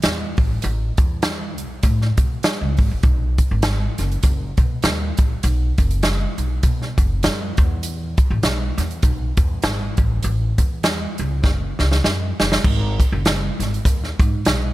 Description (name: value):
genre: uptempo 1960s-style soul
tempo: 100 BPM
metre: 4/4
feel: swing 58% on 8ths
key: B mixolydian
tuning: A4 = 440 Hz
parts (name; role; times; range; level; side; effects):
- upright bass; bass; 0.0-14.7 s; F#1 to B2; -21 LUFS; equal; none
- swinging big-band drum kit; drums; 0.0-14.6 s; crash cymbal, hi-hat, kick drum, snare drum; -19 LUFS; equal; none
room: little or no reverb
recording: none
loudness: -17 LUFS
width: side -16 dB against mid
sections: 0.0-12.6 A section; 12.6-14.7 B section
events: drum fill 11.4-12.6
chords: none